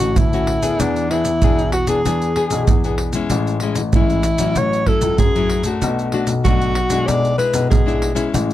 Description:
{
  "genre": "samba and choro",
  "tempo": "96 BPM",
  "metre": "4/4",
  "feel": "straight",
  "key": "unclear",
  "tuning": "A4 = 440 Hz",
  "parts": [
    { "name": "mellow alto saxophone", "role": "melody", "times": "0.0-8.3 s", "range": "D4 to D5", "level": "-20 LUFS", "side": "equal", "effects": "none" },
    { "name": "nylon-string guitar", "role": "accompaniment", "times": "0.0-8.5 s", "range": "A2 to G#4", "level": "-22 LUFS", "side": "left 5 dB", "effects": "none" },
    { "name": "dark baby grand piano", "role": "bass", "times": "0.0-8.5 s", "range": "A1 to F#2", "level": "-22 LUFS", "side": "left 2 dB", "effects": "none" },
    { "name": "maracas, surdo and pandeiro", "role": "percussion", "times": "0.2-8.5 s", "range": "none", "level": "-18 LUFS", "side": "right 1 dB", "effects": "none" }
  ],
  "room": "little or no reverb",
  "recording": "close, detailed microphones",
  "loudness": "-15 LUFS",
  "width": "side -13 dB against mid",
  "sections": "0.0-8.5 A section",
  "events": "none",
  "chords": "0.0 Dmaj7; 0.8 E7; 3.3 Amaj7; 4.6 F#m7/A; 5.8 Bm7; 7.1 E7/B"
}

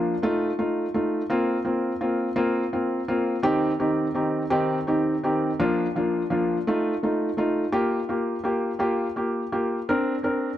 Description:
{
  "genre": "pop",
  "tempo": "56 BPM (dotted quarters)",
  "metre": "6/8",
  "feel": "straight",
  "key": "unclear",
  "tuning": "A4 = 440 Hz",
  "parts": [
    { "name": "felt-muted upright piano", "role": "solo", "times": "0.0-10.5 s", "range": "Eb3 to Bb4", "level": "-22 LUFS", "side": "equal", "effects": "none" }
  ],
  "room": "light reverb",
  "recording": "dark, warm production",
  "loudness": "-22 LUFS",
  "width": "side -12 dB against mid",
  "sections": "0.0-10.6 A section",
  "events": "none",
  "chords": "0.2 F7; 1.3 Fsus4; 3.5 Cm/Eb; 5.6 Bb/F; 6.7 F7; 7.7 Gm7; 9.9 Bbadd9"
}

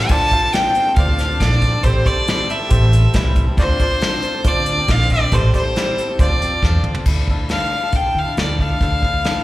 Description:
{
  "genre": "folk rock and heartland rock",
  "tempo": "138 BPM",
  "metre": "4/4",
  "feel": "straight",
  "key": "D minor",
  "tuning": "A4 = 440 Hz",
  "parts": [
    { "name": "clear fiddle", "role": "melody", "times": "0.0-9.4 s", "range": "C5 to A5", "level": "-19 LUFS", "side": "left 1 dB", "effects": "slapback echo" },
    { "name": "picked swing-style acoustic guitar", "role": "accompaniment", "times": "0.0-9.4 s", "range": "A2 to A4", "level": "-27 LUFS", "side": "left 3 dB", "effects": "slapback echo" },
    { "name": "bright baby grand piano", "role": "accompaniment", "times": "0.1-7.0 s", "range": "F4 to F5", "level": "-28 LUFS", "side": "right 2 dB", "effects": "slapback echo" },
    { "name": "upright bass", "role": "bass", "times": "0.1-9.4 s", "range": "A1 to D3", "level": "-17 LUFS", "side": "equal", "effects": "none" },
    { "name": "soft brush drum kit", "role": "drums", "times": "0.1-9.4 s", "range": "crash cymbal, hi-hat, kick drum, snare drum, toms", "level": "-20 LUFS", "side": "equal", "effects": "none" }
  ],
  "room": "little or no reverb",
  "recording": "live gig heard through the venue's PA, recital hall reverb",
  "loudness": "-14 LUFS",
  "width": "side -16 dB against mid",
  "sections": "0.0-7.1 A section; 7.1-9.4 B section",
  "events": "drum fill 6.6-7.1; fiddle solo 7.1-9.4",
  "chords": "0.1 Dm7; 1.8 Am7; 3.6 Dm7; 5.3 Am7; 6.2 Dm7; 7.1 Dmadd9"
}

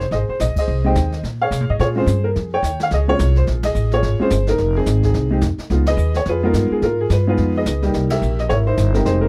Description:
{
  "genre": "jazz piano trio",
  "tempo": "215 BPM",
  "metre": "4/4",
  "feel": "swing 60% on 8ths",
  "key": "F minor",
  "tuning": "A4 = 440 Hz",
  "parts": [
    { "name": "warm upright piano", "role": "melody", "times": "0.0-9.3 s", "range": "G3 to G5", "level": "-22 LUFS", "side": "equal", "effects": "none" },
    { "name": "upright bass", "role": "bass", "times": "0.0-9.3 s", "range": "F1 to C3", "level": "-21 LUFS", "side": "equal", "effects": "none" },
    { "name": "jazz brush drum kit", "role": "drums", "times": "0.0-9.3 s", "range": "brushed snare drum, hi-hat, kick drum, ride cymbal, snare drum", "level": "-31 LUFS", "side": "equal", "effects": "none" }
  ],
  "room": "little or no reverb",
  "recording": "dry, close 1970s-style studio recording",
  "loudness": "-18 LUFS",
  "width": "mono",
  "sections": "0.0-9.3 A section",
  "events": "band accent 0.5, 3.6, 5.8, 8.1",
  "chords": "0.0 Fm7; 1.2 Bbm7; 4.6 Fm7; 5.7 Db7; 7.9 C7#9"
}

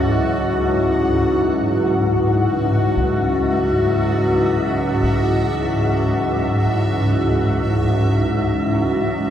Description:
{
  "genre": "dark ambient drone",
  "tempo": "free time",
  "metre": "none",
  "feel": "none",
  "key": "C# minor",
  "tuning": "A4 = 442 Hz",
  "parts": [
    { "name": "deep dark ambient pad", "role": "sustained chords", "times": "0.0-9.3 s", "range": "C#4 to F#4", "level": "-19 LUFS", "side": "left 1 dB", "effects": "chorus, built-in reverb" },
    { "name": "swarming drone", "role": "drone", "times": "0.0-9.3 s", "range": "C#2 to G#2", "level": "-19 LUFS", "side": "equal", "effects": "built-in reverb" },
    { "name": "bubbling stepped-filter texture", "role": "texture", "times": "0.0-9.3 s", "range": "F#4 to F#5", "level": "-28 LUFS", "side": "equal", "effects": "chorus, built-in reverb" },
    { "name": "taiko ensemble", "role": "percussion", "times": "3.0-5.2 s", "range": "none", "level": "-28 LUFS", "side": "equal", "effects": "low-pass filter on perc" }
  ],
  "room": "wet huge ambient reverb, RT60 8.3 s",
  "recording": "in a vast, echoing space",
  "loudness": "-16 LUFS",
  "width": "side -10 dB against mid",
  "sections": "0.0-9.3 A section",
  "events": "none",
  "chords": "0.0 C#m"
}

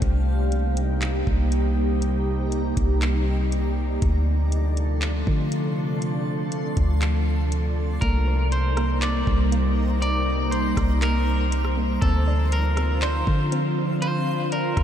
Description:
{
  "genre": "hip hop, atmospheric cloud-rap",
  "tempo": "120 BPM",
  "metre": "4/4",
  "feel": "half-time",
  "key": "C dorian",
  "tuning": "A4 = 440 Hz",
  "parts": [
    { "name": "glassy FM pad", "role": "sustained chords", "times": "0.0-14.8 s", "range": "C3 to C5", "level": "-26 LUFS", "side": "equal", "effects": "ensemble chorus, built-in reverb, sidechain pumping" },
    { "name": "soft 808-style bass", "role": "bass", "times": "0.0-14.8 s", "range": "C2 to D3", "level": "-23 LUFS", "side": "equal", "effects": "none" },
    { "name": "smooth R&B drum kit", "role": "drums", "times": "0.0-14.8 s", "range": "handclaps, hi-hat, kick drum, rim click", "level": "-29 LUFS", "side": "equal", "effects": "vintage 12-bit sampler grit" },
    { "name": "backwards swelling texture", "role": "texture", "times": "0.0-14.8 s", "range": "D4 to C6", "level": "-36 LUFS", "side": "equal", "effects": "built-in reverb" },
    { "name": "electric guitar at the edge of break-up", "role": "melody", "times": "8.0-14.8 s", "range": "A4 to D5", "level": "-28 LUFS", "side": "equal", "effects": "ping-pong delay" },
    { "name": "soft round pluck", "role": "arpeggios", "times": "8.0-14.8 s", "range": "Bb3 to C6", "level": "-35 LUFS", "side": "right 2 dB", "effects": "none" }
  ],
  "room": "light reverb, digital ambience",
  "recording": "none",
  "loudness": "-20 LUFS",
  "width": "side -10 dB against mid",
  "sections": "0.0-8.0 A section; 8.0-14.8 B section",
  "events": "none",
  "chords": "0.0 Cm7; 4.0 Dm7; 8.0 Cm7; 12.0 Dm7"
}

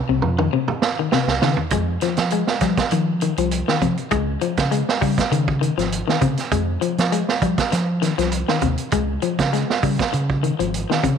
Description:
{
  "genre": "afrobeat",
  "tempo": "100 BPM",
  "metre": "4/4",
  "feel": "swing 54% on 16ths",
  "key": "F minor",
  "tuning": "A4 = 440 Hz",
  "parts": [
    { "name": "electric guitar at the edge of break-up", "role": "arpeggios", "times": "0.1-11.2 s", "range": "C3 to Ab3", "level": "-22 LUFS", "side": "left 9 dB", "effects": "none" },
    { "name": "fingered electric bass", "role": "bass", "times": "0.1-11.2 s", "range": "Ab1 to F3", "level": "-22 LUFS", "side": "right 1 dB", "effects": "none" },
    { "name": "vintage drum kit", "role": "drums", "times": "0.2-11.2 s", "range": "hi-hat, kick drum, snare drum, toms", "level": "-22 LUFS", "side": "right 6 dB", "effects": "none" }
  ],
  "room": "moderate echo chamber reverb, RT60 2.2 s",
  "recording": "1960s-style stereo with parts hard left and right",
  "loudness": "-18 LUFS",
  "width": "side -7 dB against mid",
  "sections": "0.0-1.7 A section; 1.7-11.2 B section",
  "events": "drum fill 0.0-1.7",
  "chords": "0.0 Dbmaj9 (rootless); 1.7 Fm7; 4.1 Dbadd9; 6.5 Fm7; 8.9 Db"
}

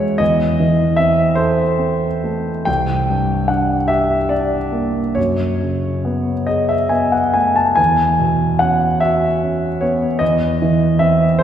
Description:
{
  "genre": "classical, impressionist solo piano",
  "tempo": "44-52 BPM (dotted quarters)",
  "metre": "6/8",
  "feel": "rubato",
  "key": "unclear",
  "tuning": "A4 = 438 Hz",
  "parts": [
    { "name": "warm grand piano", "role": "solo", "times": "0.0-11.4 s", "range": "C2 to A5", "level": "-14 LUFS", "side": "equal", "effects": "none" }
  ],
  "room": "wet concert hall reverb, RT60 2.3 s",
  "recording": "heard from further back in the room",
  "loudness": "-14 LUFS",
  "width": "side -9 dB against mid",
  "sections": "0.0-11.4 A section",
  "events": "none",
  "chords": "0.2 Am/E; 2.7 Csus2; 5.2 F#madd9; 7.8 E69; 10.2 Am/E (rootless)"
}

